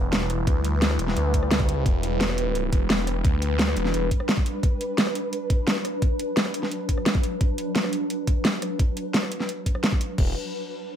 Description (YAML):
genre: dark technical drum and bass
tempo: 173 BPM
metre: 4/4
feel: straight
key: E minor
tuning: A4 = 440 Hz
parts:
  - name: swarming drone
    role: sustained chords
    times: 0.0-10.3 s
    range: F#3 to B4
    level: -29 LUFS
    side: equal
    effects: built-in reverb, sidechain pumping
  - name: phased detuned saw bass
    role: bass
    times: 0.0-4.1, 10.2-10.3 s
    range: E1 to D2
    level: -25 LUFS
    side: equal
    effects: phaser, tube saturation
  - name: dubstep drum kit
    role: drums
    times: 0.1-10.3 s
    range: crash cymbal, hi-hat, rim click, snare drum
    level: -25 LUFS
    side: equal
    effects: none
  - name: electronic kick drum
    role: drums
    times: 0.5-10.3 s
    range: none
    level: -22 LUFS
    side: equal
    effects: none
room: light reverb, digital ambience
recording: none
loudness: -22 LUFS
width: side -9 dB against mid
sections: 0.0-10.2 A section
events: filter sweep on synth drone 0.0-10.2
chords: 0.0 Em; 4.6 Bm; 10.2 Em